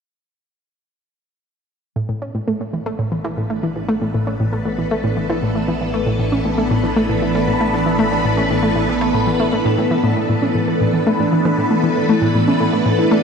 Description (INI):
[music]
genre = ambient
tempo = 117 BPM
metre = 4/4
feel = straight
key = unclear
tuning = A4 = 440 Hz
[part]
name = phased string machine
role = sustained chords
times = 2.0-13.2 s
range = E3 to B4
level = -19 LUFS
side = equal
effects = ensemble chorus, phaser, shimmer reverb
[part]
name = analog pluck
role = riff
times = 2.0-13.2 s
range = A2 to C#4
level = -18 LUFS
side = equal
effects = chorus, tape echo, shimmer reverb
[part]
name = analog drone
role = bass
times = 3.2-10.1 s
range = A1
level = -30 LUFS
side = equal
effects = chorus
[part]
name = pulsing gated texture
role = texture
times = 3.2-13.2 s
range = D4 to D5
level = -26 LUFS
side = right 1 dB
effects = chorus, built-in reverb, shimmer reverb
[sound]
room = wet cathedral reverb, RT60 6.5 s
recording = in a vast, echoing space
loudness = -16 LUFS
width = side -6 dB against mid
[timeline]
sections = 2.0-10.2 A section; 10.2-13.2 B section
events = fade-in on string machine 2.0-10.2; fade-in on synth drone 2.0-10.2; fade-in on synth texture 2.0-10.2; filter sweep on synth arpeggio sound 2.0-10.2, 10.2-13.2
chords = 2.0 Asus2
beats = | 1.96 2.48 2.99 3.50 | 4.01 4.53 5.04 5.55 | 6.07 6.58 7.09 7.60 | 8.12 8.63 9.14 9.66 | 10.17 10.68 11.19 11.71 | 12.22 12.73